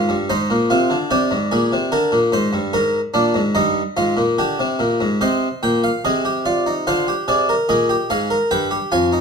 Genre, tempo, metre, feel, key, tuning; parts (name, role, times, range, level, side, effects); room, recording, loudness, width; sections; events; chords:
classical, baroque-style 3-part fugue for harpsichord; 73 BPM; 4/4; straight; Eb major, C minor from 5.2 s; A4 = 440 Hz
harpsichord; solo; 0.0-9.2 s; F2 to Ab5; -16 LUFS; equal
moderate large studio reverb, RT60 0.8 s; minimal, uncompressed stereo recording; -16 LUFS; side -6 dB against mid
0.0-5.2 A section; 5.2-9.2 B section
0.3 Fm7/Ab; 1.9 Bb7; 3.6 Eb/G; 5.2 Cm; 6.9 Dm7b5; 8.5 G7